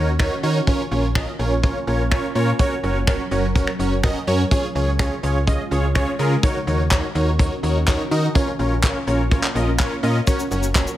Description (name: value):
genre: dance-pop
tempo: 125 BPM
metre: 4/4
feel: straight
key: Eb minor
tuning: A4 = 440 Hz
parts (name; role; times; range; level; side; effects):
- big bright polysynth; accompaniment; 0.0-10.9 s; Db4 to Eb5; -23 LUFS; right 1 dB; sidechain pumping
- ethereal airy pad; sustained chords; 0.0-11.0 s; Db3 to Bb4; -30 LUFS; equal; ensemble chorus, built-in reverb, sidechain pumping
- slap-like FM bass; bass; 0.0-10.9 s; Gb1 to Eb3; -21 LUFS; equal; sidechain pumping
- vintage brush drum kit; drums; 0.2-11.0 s; finger snaps, handclaps, hi-hat, kick drum, shaker; -21 LUFS; equal; none
room: little or no reverb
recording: none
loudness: -18 LUFS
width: side -14 dB against mid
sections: 0.0-11.0 A section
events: none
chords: 0.0 Ebm7; 0.7 Bbm; 2.6 Gb; 4.5 Db; 6.4 Ebm7; 8.4 Bbm; 10.3 Gb